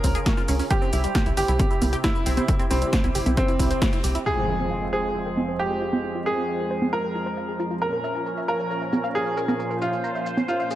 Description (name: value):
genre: uplifting trance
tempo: 135 BPM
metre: 4/4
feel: straight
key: F harmonic minor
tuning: A4 = 440 Hz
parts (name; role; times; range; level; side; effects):
- bright baby grand piano; second line; 0.0-10.8 s; C4 to Bb4; -27 LUFS; equal; dub echo
- filtered supersaw swell; sustained chords; 0.0-10.8 s; F2 to C5; -29 LUFS; right 1 dB; sidechain pumping
- tight sequenced synth; arpeggios; 0.0-10.7 s; G3 to Bb5; -32 LUFS; equal; chorus, sidechain pumping, dub echo
- tight sequencer bass; bass; 0.0-4.2 s; G1 to Db2; -24 LUFS; equal; sidechain pumping
- electronic kick drum; drums; 0.0-3.9 s; none; -24 LUFS; equal; none
- punchy analog drum machine; drums; 0.0-10.8 s; congas, hi-hat, shaker, snare drum; -27 LUFS; right 1 dB; low-pass filter on hats, low-pass filter on perc, low-pass filter on snare, low-pass filter on room
- impact; sound effects; 4.3-6.0 s; none; -32 LUFS; equal; none
room: light reverb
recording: none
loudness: -21 LUFS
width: side -13 dB against mid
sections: 0.0-4.3 A section; 4.3-10.8 B section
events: band accent 3.8; impact 4.3-6.0; filter sweep on drum 4.3-10.8; filter sweep on synth arpeggio sound 4.3-10.8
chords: 0.0 Db; 0.7 C; 4.3 Fm; 7.8 Bbm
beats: 0.26 | 0.71 1.15 1.59 2.04 | 2.48 2.93 3.37 3.82 | 4.26 4.71 5.15 5.59 | 6.04 6.48 6.93 7.37 | 7.82 8.26 8.71 9.15 | 9.59 10.04 10.48